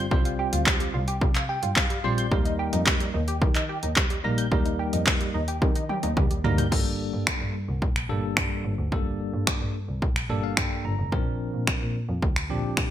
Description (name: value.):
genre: dance-pop.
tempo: 109 BPM.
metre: 4/4.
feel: straight.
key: G minor.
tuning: A4 = 440 Hz.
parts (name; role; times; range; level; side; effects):
bell-like tine electric piano; accompaniment; 0.0-12.9 s; F3 to Bb5; -30 LUFS; left 1 dB; medium stereo tremolo, sidechain pumping.
tight sequenced synth; arpeggios; 0.0-6.7 s; G3 to G6; -31 LUFS; right 2 dB; chorus, sidechain pumping, digital delay.
warm double bass; bass; 0.0-12.9 s; F1 to Eb3; -29 LUFS; equal; sidechain pumping.
punchy analog drum machine; drums; 0.1-12.9 s; crash cymbal, finger snaps, handclaps, hi-hat, kick drum, toms; -24 LUFS; equal; gated reverb.
room: light reverb, digital ambience.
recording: bright 1980s-style digital production.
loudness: -23 LUFS.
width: side -11 dB against mid.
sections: 0.0-6.7 A section; 6.7-12.9 B section.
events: tine electric piano fill 1.2-2.3, 10.0-11.1; drum fill 5.6-6.7.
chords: 0.0 Csus4; 2.3 Eb; 6.7 Gmadd9.